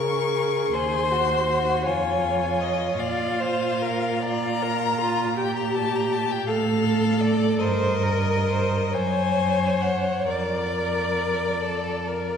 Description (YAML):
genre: classical, slow romantic movement for string quartet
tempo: 43-56 BPM (dotted quarters)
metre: 6/8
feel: rubato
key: Bb major from 3.0 s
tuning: A4 = 440 Hz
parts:
  - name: rich violin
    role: melody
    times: 0.0-12.4 s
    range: D5 to Db6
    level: -28 LUFS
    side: left 7 dB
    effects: none
  - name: rich violin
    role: second line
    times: 0.0-12.4 s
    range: F4 to C5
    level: -28 LUFS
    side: left 3 dB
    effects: none
  - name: rich viola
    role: accompaniment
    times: 0.0-12.3 s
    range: F4 to D5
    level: -26 LUFS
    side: right 1 dB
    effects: none
  - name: clear cello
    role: bass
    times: 0.0-12.4 s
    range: Eb2 to Db3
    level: -26 LUFS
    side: right 3 dB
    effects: none
room: wet concert hall reverb, RT60 1.9 s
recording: heard from further back in the room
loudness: -21 LUFS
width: side -7 dB against mid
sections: 0.0-12.4 A section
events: none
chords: 0.0 Db5; 0.7 Ab7/Eb; 1.9 Db/F; 3.0 Bb5; 5.4 Gmadd9/Bb; 6.5 F/A; 7.6 Eb/G; 8.9 Gb5; 10.3 Bb/F